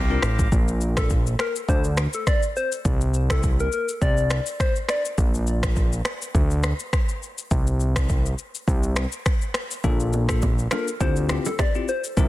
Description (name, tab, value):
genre	afrobeats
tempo	103 BPM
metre	4/4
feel	swing 55% on 16ths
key	D minor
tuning	A4 = 440 Hz
part	pipe organ, soft reed	sustained chords	0.0-0.5 s	C5 to D6	-31 LUFS	left 1 dB	none
part	fat analog bass	bass	0.0-12.3 s	A1 to D2	-22 LUFS	equal	none
part	bell-like tine electric piano	accompaniment	0.1-0.2, 9.8-12.3 s	Bb3 to Bb4	-29 LUFS	left 6 dB	none
part	afro-pop drum kit	drums	0.2-12.3 s	finger snaps, kick drum, rim click, shaker	-23 LUFS	equal	soft clipping on snare
part	soft struck synth lead	melody	1.0-5.0, 10.3-12.0 s	A4 to D5	-28 LUFS	left 2 dB	chorus, digital delay
part	congas and bongos	percussion	9.8-12.3 s	none	-33 LUFS	right 5 dB	none
room	digital ambience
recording	dense, heavily limited modern master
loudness	-20 LUFS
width	side -16 dB against mid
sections	0.5-12.3 A section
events	none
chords	0.0 C9sus4; 0.5 N.C.; 1.7 Amadd11/D (rootless); 2.9 Csus2; 5.2 N.C.; 9.8 Bbmaj7; 11.0 Dm11